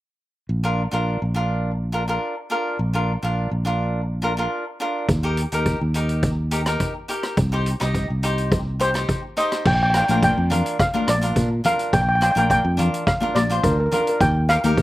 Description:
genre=calypso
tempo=105 BPM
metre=4/4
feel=straight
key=Bb major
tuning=A4 = 440 Hz
part: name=fingered electric bass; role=bass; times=0.5-14.8 s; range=Bb1 to Bb2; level=-22 LUFS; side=equal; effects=none
part: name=cavaquinho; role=accompaniment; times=0.6-14.8 s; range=D4 to Eb5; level=-25 LUFS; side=equal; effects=slapback echo
part: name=street-band drum kit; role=drums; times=5.1-14.8 s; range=crash cymbal, hi-hat, kick drum, rim click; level=-24 LUFS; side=equal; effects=none
part: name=steel pan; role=melody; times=8.8-14.8 s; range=Bb4 to G5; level=-21 LUFS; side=equal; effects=slapback echo
part: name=congas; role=percussion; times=10.1-14.8 s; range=none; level=-26 LUFS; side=left 4 dB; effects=none
room=little or no reverb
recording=recorded outdoors, with no room sound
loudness=-19 LUFS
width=side -16 dB against mid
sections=0.5-9.7 A section; 9.7-14.8 B section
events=none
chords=0.5 Bb; 5.1 Eb; 7.4 Cm; 9.7 Bb6; 14.2 Eb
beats=| 0.50 1.07 1.65 2.22 | 2.79 3.37 3.94 4.51 | 5.09 5.66 6.23 6.80 | 7.37 7.95 8.52 9.09 | 9.65 10.22 10.79 11.36 | 11.93 12.50 13.07 13.64 | 14.21 14.77

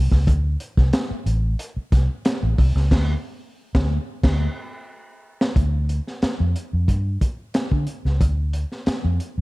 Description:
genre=funk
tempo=91 BPM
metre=4/4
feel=straight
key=unclear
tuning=A4 = 440 Hz
part: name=vintage muted fingered electric bass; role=bass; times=0.0-9.4 s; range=A1 to D3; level=-20 LUFS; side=equal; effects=none
part: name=crunchy breakbeat drum kit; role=drums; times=0.1-9.4 s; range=crash cymbal, hi-hat, kick drum, snare drum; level=-21 LUFS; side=equal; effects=none
room=little or no reverb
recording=dark, warm production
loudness=-19 LUFS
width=side -22 dB against mid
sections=0.0-5.6 A section; 5.6-9.4 B section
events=band accent 2.9-5.6; drum fill 4.2-5.6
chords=none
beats=| 0.27 0.93 1.59 2.25 | 2.91 3.57 4.23 4.90 | 5.56 6.22 6.88 7.55 | 8.21 8.87

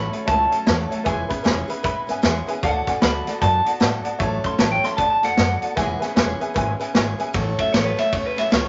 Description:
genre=rockabilly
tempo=153 BPM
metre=4/4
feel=swing 62% on 8ths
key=A major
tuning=A4 = 439 Hz
part: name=electric guitar through a small old amp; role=melody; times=0.0-8.7 s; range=B4 to C6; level=-24 LUFS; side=equal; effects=none
part: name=honky-tonk upright piano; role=accompaniment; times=0.0-7.3 s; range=B4 to B5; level=-30 LUFS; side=equal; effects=none
part: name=picked steel-string acoustic guitar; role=accompaniment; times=0.0-8.7 s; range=A2 to A4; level=-31 LUFS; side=equal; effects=none
part: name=upright bass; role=bass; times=0.0-8.7 s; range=E1 to A2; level=-29 LUFS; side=equal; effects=none
part: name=vintage drum kit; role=drums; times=0.1-8.6 s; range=hi-hat, kick drum, ride cymbal, snare drum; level=-25 LUFS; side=equal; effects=none
room=moderate studio reverb, RT60 0.5 s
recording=nothing above 7.6 kHz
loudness=-21 LUFS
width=mono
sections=0.0-7.3 A section; 7.3-8.7 A section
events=none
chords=0.0 A6; 1.1 E6; 2.6 D6; 4.2 A6; 5.0 D6; 5.8 E6; 7.3 A6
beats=0.28 0.67 | 1.06 1.46 1.85 2.24 | 2.63 3.03 3.42 3.81 | 4.20 4.60 4.99 5.38 | 5.77 6.17 6.56 6.95 | 7.34 7.74 8.13 8.52

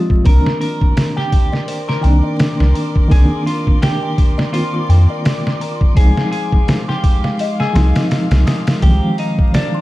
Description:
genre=trip hop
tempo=84 BPM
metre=4/4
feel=swing 57% on 16ths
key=C minor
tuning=A4 = 441 Hz
part: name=clean electric guitar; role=melody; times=0.0-9.8 s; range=D4 to Bb4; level=-24 LUFS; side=equal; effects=wide subtle chorus, tape echo
part: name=reed electric piano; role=accompaniment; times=0.0-9.8 s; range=Eb3 to G4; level=-20 LUFS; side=equal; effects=fast tremolo, vintage 12-bit sampler grit, tape echo
part: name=music box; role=arpeggios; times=0.0-9.8 s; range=Bb4 to E6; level=-30 LUFS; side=left 5 dB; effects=vintage 12-bit sampler grit, ping-pong delay
part: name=trip hop sampler-style drum kit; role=drums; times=0.1-9.7 s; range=hi-hat, kick drum, snare drum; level=-15 LUFS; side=equal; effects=none
part: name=wind-like tuned noise texture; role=texture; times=1.5-9.8 s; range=D6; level=-36 LUFS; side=right 6 dB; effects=built-in reverb
part: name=rich chamber string section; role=sustained chords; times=0.3-9.8 s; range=Ab3 to C6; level=-28 LUFS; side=right 1 dB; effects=none
part: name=warm sub bass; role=bass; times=0.3-9.0 s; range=C2 to F2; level=-11 LUFS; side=equal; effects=none
room=little or no reverb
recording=dark, warm production, vinyl crackle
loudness=-12 LUFS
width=side -17 dB against mid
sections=0.0-9.8 A section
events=none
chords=0.2 Cm9; 6.0 Fm7/C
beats=| 0.25 0.96 1.68 2.39 | 3.10 3.82 4.53 5.25 | 5.96 6.68 7.39 8.11 | 8.82 9.53

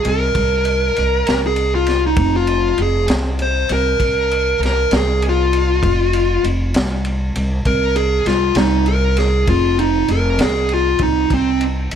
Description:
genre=slow blues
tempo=66 BPM (dotted quarters)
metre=12/8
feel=straight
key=F minor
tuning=A4 = 444 Hz
part: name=dark smooth lead guitar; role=melody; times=0.0-11.6 s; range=C4 to C5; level=-17 LUFS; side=equal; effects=overdrive
part: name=upright bass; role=bass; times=0.0-12.0 s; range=F1 to C2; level=-18 LUFS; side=equal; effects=none
part: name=crunchy breakbeat drum kit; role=drums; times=0.0-12.0 s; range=kick drum, ride cymbal, snare drum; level=-23 LUFS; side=equal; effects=none
room=light reverb, studio ambience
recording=none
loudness=-14 LUFS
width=side -8 dB against mid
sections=0.0-12.0 A section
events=lead electric guitar solo 0.0-12.0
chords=0.0 F5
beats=0.35 1.26 | 2.18 3.09 4.00 4.91 | 5.83 6.74 7.65 8.57 | 9.48 10.39 11.30

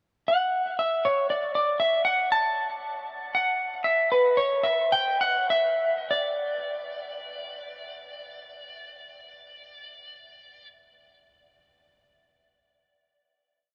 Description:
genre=rock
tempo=94-119 BPM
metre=3/4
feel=straight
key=D major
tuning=A4 = 441 Hz
part: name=electric slide guitar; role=solo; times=0.3-10.7 s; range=B4 to A5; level=-27 LUFS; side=equal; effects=digital delay
room=moderate huge ambient reverb, RT60 8.4 s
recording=none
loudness=-25 LUFS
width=mono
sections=0.0-6.1 A section; 6.1-9.9 final note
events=slowing down 2.8-6.1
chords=none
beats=0.28 0.79 | 1.29 1.80 2.30 | 2.80 3.31 3.83 | 4.36 4.92 5.50 | 6.11 6.75 7.38 | 8.02 8.66 9.30

